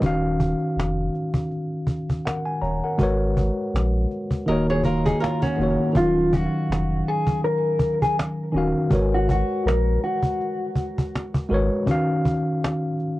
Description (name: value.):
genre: lo-fi hip hop.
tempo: 81 BPM.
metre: 4/4.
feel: swing 59% on 16ths.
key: Eb minor.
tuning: A4 = 441 Hz.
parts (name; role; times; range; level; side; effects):
tine electric piano; accompaniment; 0.0-13.2 s; Eb3 to Bb5; -23 LUFS; equal; medium stereo tremolo, cassette tape.
warm sub bass; bass; 0.0-11.7 s; Eb1 to Bb1; -25 LUFS; equal; none.
cajon; drums; 0.0-13.1 s; none; -25 LUFS; equal; cassette tape.
flamenco guitar; second line; 4.5-5.9 s; Db4 to Eb5; -25 LUFS; right 2 dB; cassette tape, plate reverb, tape echo.
mellow electric guitar; melody; 6.0-11.3 s; F4 to Bb4; -24 LUFS; left 1 dB; cassette tape, plate reverb, tape echo.
room: light reverb.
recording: home recording on cassette.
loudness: -20 LUFS.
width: side -17 dB against mid.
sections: 0.0-5.9 A section; 5.9-13.2 A section.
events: none.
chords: 0.0 Ebm9; 3.0 Abm11; 4.5 Ebm7; 5.9 Ebm9; 8.9 Abm11; 11.9 Ebm9.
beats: | 0.02 0.76 1.50 2.25 | 2.99 3.73 4.47 5.21 | 5.95 6.69 7.43 8.17 | 8.91 9.65 10.39 11.13 | 11.88 12.62.